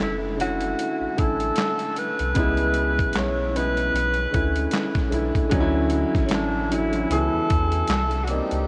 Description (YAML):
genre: lo-fi hip hop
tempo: 76 BPM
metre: 4/4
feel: swing 59% on 16ths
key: B dorian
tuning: A4 = 436 Hz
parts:
  - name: breathy tenor saxophone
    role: melody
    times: 0.0-8.7 s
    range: C#4 to C#5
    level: -28 LUFS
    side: equal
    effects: delay
  - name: warm upright piano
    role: accompaniment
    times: 0.0-8.7 s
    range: C#3 to G#4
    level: -28 LUFS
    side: equal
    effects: none
  - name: soft dub sub bass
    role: bass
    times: 0.0-8.7 s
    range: F#1 to E2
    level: -30 LUFS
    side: equal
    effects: none
  - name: dusty soul sampler-style drum kit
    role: drums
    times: 0.0-8.7 s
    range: handclaps, hi-hat, kick drum, snare drum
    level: -30 LUFS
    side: equal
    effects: none
room: wet huge ambient reverb, RT60 8.0 s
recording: dreamy mix soaked in reverb, cassette tape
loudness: -23 LUFS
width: mono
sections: 0.0-5.5 A section; 5.5-8.7 B section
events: none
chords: 0.0 Bm11 (rootless); 2.4 C#m7; 3.9 Bm11; 5.5 Dmaj9; 7.1 C#m7; 7.9 Cm9